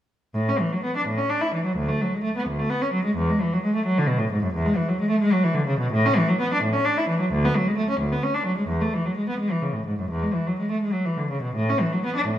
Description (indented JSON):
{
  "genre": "classical, baroque-style suite movement for unaccompanied cello",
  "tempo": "86 BPM (dotted quarters)",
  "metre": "12/8",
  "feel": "rubato",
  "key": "A major",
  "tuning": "A4 = 440 Hz",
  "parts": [
    { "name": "warm cello", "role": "solo", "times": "0.3-12.4 s", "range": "D2 to E4", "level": "-21 LUFS", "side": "equal", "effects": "none" }
  ],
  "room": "wet recital hall reverb, RT60 1.5 s",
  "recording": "none",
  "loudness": "-21 LUFS",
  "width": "side -11 dB against mid",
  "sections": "0.3-12.4 A section",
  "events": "none",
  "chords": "none"
}